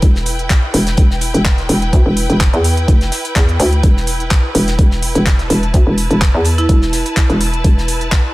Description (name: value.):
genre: bass house.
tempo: 126 BPM.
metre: 4/4.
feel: swing 54% on 16ths.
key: E minor.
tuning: A4 = 438 Hz.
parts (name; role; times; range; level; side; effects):
hollow knocking FM bass; bass; 0.0-8.1 s; E1 to E2; -15 LUFS; equal; tube saturation, sidechain pumping.
damped 70s drum kit; drums; 0.0-8.2 s; hi-hat, snare drum; -29 LUFS; left 2 dB; none.
electronic kick drum; drums; 0.0-8.2 s; none; -11 LUFS; equal; none.
garage drum kit; drums; 0.0-8.2 s; handclaps, hi-hat; -21 LUFS; equal; none.
clear symphonic string section; texture; 0.0-8.3 s; E4 to A5; -23 LUFS; equal; sidechain pumping.
marimba with medium hard mallets; melody; 6.6-6.7 s; E4; -23 LUFS; right 2 dB; none.
room: little or no reverb.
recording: none.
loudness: -11 LUFS.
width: side -19 dB against mid.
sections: 0.0-8.3 A section.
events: none.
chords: 0.0 Em.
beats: | 0.03 0.50 0.98 1.45 | 1.93 2.41 2.88 3.36 | 3.83 4.31 4.79 5.26 | 5.74 6.21 6.69 7.17 | 7.64 8.12.